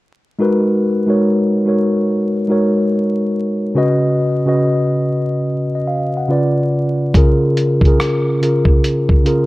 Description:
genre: lo-fi hip hop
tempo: 71 BPM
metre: 4/4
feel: swing 63% on 16ths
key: G# dorian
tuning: A4 = 440 Hz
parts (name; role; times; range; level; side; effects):
- mellow tine electric piano; accompaniment; 0.4-9.5 s; C#3 to F#5; -14 LUFS; equal; slow stereo tremolo
- dusty soul sampler-style drum kit; drums; 7.1-9.5 s; hi-hat, kick drum, rim click; -13 LUFS; equal; vintage 12-bit sampler grit
room: light reverb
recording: dark, warm production, vinyl crackle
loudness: -13 LUFS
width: side -19 dB against mid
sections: 0.4-9.5 A section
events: none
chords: 0.4 G#m9; 3.8 C#7sus4; 6.3 C#7b9; 7.1 C#6

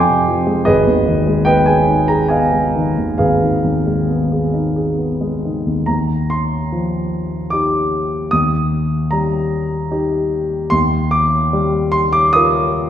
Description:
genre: classical, impressionist solo piano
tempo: 66-79 BPM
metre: 3/4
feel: rubato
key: Eb major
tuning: A4 = 440 Hz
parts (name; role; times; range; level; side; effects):
- warm concert grand piano; solo; 0.0-12.9 s; Ab1 to Eb6; -14 LUFS; equal; none
room: wet concert hall reverb, RT60 1.7 s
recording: heard from further back in the room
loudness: -14 LUFS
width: side -10 dB against mid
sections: 0.0-5.9 A section; 5.9-12.9 B section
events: none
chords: 0.0 Fmadd9; 0.7 Abm6; 5.9 Ebadd9; 8.3 Eb; 10.7 Ebadd9

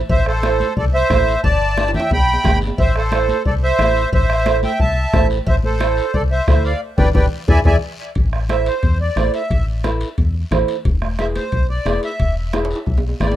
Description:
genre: latin, cumbia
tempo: 179 BPM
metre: 4/4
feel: straight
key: A minor, A harmonic minor from 8.2 s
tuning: A4 = 439 Hz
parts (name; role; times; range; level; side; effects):
- organ-like FM bass; bass; 0.0-13.3 s; E1 to E2; -19 LUFS; equal; none
- accordion; melody; 0.1-13.4 s; A4 to B5; -20 LUFS; equal; light tremolo tuning, tape echo
- bombo; percussion; 0.1-13.4 s; none; -19 LUFS; left 1 dB; none
- congas; percussion; 0.1-13.4 s; none; -27 LUFS; left 2 dB; none
- cowbell and timbales; percussion; 0.1-13.4 s; none; -31 LUFS; right 4 dB; none
- guiro; percussion; 0.1-13.4 s; none; -39 LUFS; left 4 dB; none
- nylon-string guitar; accompaniment; 0.4-13.4 s; D4 to C5; -22 LUFS; right 5 dB; none
room: light reverb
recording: rough home demo mix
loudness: -15 LUFS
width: side -13 dB against mid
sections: 0.0-8.2 A section; 8.2-13.4 B section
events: drum fill 1.8-2.8, 7.2-8.2, 12.5-13.4; band accent 6.8-8.2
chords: 0.0 Am; 1.4 G; 2.8 Am; 6.8 G; 7.5 E7; 8.2 Am; 10.9 E

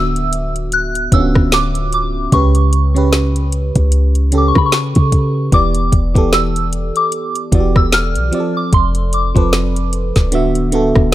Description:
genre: contemporary R&B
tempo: 75 BPM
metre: 4/4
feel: swing 58% on 16ths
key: unclear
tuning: A4 = 440 Hz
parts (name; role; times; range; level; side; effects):
- soft synth bell; melody; 0.0-11.1 s; B5 to F#6; -19 LUFS; left 1 dB; chorus, phaser, ping-pong delay
- FM electric piano; accompaniment; 0.0-11.1 s; C#3 to E5; -18 LUFS; right 2 dB; chorus
- clean 808-style bass; bass; 0.0-11.1 s; D1 to C#3; -16 LUFS; equal; none
- smooth R&B drum kit; drums; 0.2-11.1 s; hi-hat, kick drum, rim click, snare drum; -14 LUFS; equal; none
room: little or no reverb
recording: none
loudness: -12 LUFS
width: side -14 dB against mid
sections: 0.0-11.1 A section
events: none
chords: 0.0 D69; 2.3 A7/C#; 5.5 Em7; 8.3 F6; 10.3 D69

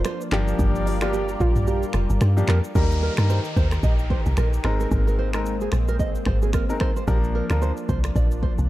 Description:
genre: afrobeats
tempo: 111 BPM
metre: 4/4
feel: swing 58% on 16ths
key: Eb major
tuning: A4 = 440 Hz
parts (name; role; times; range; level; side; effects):
- soft round pluck; melody; 0.0-2.4 s; F4 to G4; -32 LUFS; right 1 dB; chorus, digital delay
- lush unison pad; sustained chords; 0.0-8.7 s; Eb3 to Bb4; -31 LUFS; left 1 dB; chorus
- deep log drum bass; bass; 0.0-8.7 s; F1 to G2; -22 LUFS; equal; none
- afro-pop drum kit; drums; 0.0-8.7 s; finger snaps, handclaps, hi-hat, kick drum, rim click, shaker, toms; -25 LUFS; equal; none
- nylon-string guitar; riff; 0.1-8.5 s; G4 to Eb5; -31 LUFS; right 7 dB; digital delay
- warm horn section; second line; 0.3-2.4 s; Bb3 to D5; -35 LUFS; left 1 dB; digital delay
- clear baby grand piano; accompaniment; 0.3-7.7 s; F3 to Bb4; -28 LUFS; left 3 dB; none
- downlifter; sound effects; 2.8-7.1 s; none; -38 LUFS; equal; none
room: digital ambience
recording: dark, warm production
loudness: -19 LUFS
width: side -16 dB against mid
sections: 0.0-2.8 A section; 2.8-8.7 B section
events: kick muted 1.7-2.8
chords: 0.3 Gm7; 2.8 Eb; 4.6 Abadd9; 7.1 Bb

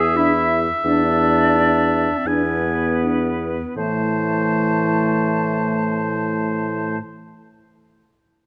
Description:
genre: classical, slow romantic movement for wind quintet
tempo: 42 BPM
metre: 4/4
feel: rubato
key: A minor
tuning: A4 = 439 Hz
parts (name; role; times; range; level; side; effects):
- silver concert flute; melody; 0.0-7.0 s; B4 to A5; -28 LUFS; equal; none
- clear oboe; second line; 0.0-7.0 s; C5 to G#5; -25 LUFS; equal; none
- clear clarinet; accompaniment; 0.0-7.0 s; A3 to G#4; -26 LUFS; equal; none
- dark bassoon; bass; 0.0-7.0 s; E2 to A2; -25 LUFS; equal; none
- dark French horn; accompaniment; 0.2-7.0 s; E3 to D4; -27 LUFS; equal; none
room: moderate concert hall reverb, RT60 2.1 s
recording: close, detailed microphones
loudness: -19 LUFS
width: mono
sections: 0.0-3.8 A section; 3.8-8.5 B section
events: slowing down 0.0-3.8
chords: 0.0 E7; 3.8 Am

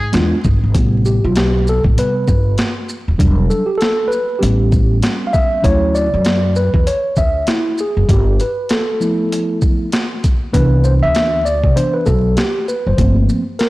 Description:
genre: hip hop, jazz-hop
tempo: 98 BPM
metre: 4/4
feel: swing 60% on 16ths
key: A minor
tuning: A4 = 439 Hz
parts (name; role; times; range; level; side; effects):
- upright bass; bass; 0.0-13.3 s; D#1 to G#2; -15 LUFS; equal; transformer saturation
- mellow tine electric piano; accompaniment; 0.1-13.7 s; C3 to F5; -17 LUFS; equal; medium stereo tremolo
- boom bap sampler-style drum kit; drums; 0.1-13.7 s; hi-hat, kick drum, shaker, snare drum; -17 LUFS; equal; overdrive
room: light reverb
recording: blown-out, overdriven recording, vinyl crackle, overdrive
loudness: -13 LUFS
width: side -19 dB against mid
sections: 0.7-13.7 A section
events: tine electric piano solo 0.7-13.7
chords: 0.0 E7b9; 0.7 Am7; 3.2 Em9; 4.4 A7; 5.6 Dmaj9; 8.1 G13; 10.5 Cmaj9; 13.0 Gm11

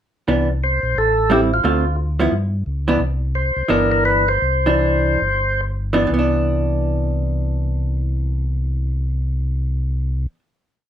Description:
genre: soul jazz organ trio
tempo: 124-177 BPM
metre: 4/4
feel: swing 63% on 8ths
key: C major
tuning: A4 = 440 Hz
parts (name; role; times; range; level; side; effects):
- vintage hollow-body jazz guitar; accompaniment; 0.3-10.4 s; D3 to F4; -20 LUFS; right 1 dB; none
- mellow tonewheel organ; bass; 0.3-10.3 s; G1 to G2; -20 LUFS; equal; chorus vibrato, slow rotary speaker
- percussive tonewheel organ; melody; 0.6-5.6 s; F4 to C5; -18 LUFS; equal; slow rotary speaker
room: wet small room reverb, RT60 0.6 s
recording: rough home demo mix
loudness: -17 LUFS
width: side -10 dB against mid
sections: 0.3-6.1 A section; 6.1-10.0 final chord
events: slowing down 3.0-6.1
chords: 0.3 Cmaj9; 1.0 Am7; 1.6 Dm7; 2.3 G6; 3.0 Cmaj9

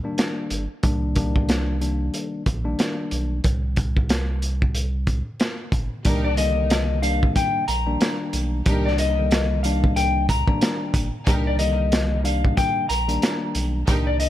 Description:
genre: hip hop, boom-bap hip-hop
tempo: 92 BPM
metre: 4/4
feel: swing 59% on 16ths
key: C minor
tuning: A4 = 442 Hz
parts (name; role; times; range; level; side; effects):
- mellow tine electric piano; accompaniment; 0.0-14.3 s; C2 to D4; -27 LUFS; left 2 dB; cassette tape, high-pass filter, low-pass filter
- crunchy breakbeat drum kit; drums; 0.2-14.3 s; hi-hat, kick drum, snare drum; -23 LUFS; equal; none
- warm sub bass; bass; 0.5-14.3 s; G1 to C2; -24 LUFS; equal; none
- sleigh bells; percussion; 6.0-14.3 s; none; -38 LUFS; right 7 dB; none
- warm studio string section; stabs; 6.1-14.2 s; Eb4 to Bb4; -32 LUFS; right 1 dB; high-pass filter, low-pass filter, tape echo
- electric guitar at the edge of break-up; melody; 6.2-14.3 s; D5 to Bb5; -25 LUFS; left 4 dB; high-pass filter, low-pass filter, tape echo
room: little or no reverb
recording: none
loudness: -20 LUFS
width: side -12 dB against mid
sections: 0.0-6.0 A section; 6.0-14.3 B section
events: none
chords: 0.0 Cm7

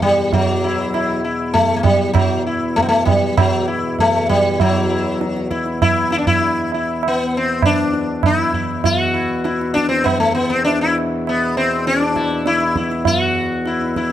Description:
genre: indian classical, Hindustani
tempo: 99 BPM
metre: 7/4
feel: straight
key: E raga darbari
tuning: A4 = 439 Hz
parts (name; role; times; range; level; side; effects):
- sitar; melody; 0.0-14.1 s; F#3 to F#4; -17 LUFS; left 2 dB; none
- pedal harmonium; drone; 0.0-14.1 s; E2 to B2; -23 LUFS; left 1 dB; none
- tabla; percussion; 0.0-14.1 s; none; -20 LUFS; right 5 dB; none
room: light reverb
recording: close, detailed microphones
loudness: -15 LUFS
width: side -11 dB against mid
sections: 0.0-4.6 A section; 4.6-14.1 B section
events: none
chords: none

